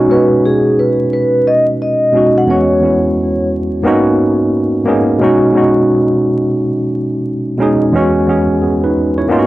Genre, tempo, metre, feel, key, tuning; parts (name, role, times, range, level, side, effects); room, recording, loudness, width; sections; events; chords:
hip hop; 88 BPM; 4/4; swing 64% on 16ths; B major; A4 = 440 Hz
tine electric piano; accompaniment; 0.0-9.5 s; E2 to C#5; -11 LUFS; equal; overdrive, fast stereo tremolo, low-pass filter
vibraphone with soft mallets; melody; 0.1-3.5 s; G#4 to F#5; -14 LUFS; equal; low-pass filter, analog delay
wet studio reverb, RT60 0.6 s; worn, warbling old tape, cassette tape, vinyl crackle, warbly pitch drift; -10 LUFS; side -16 dB against mid
0.0-9.5 A section
0.0 B6; 2.5 E6; 3.8 G#m11; 5.2 B6; 7.9 E6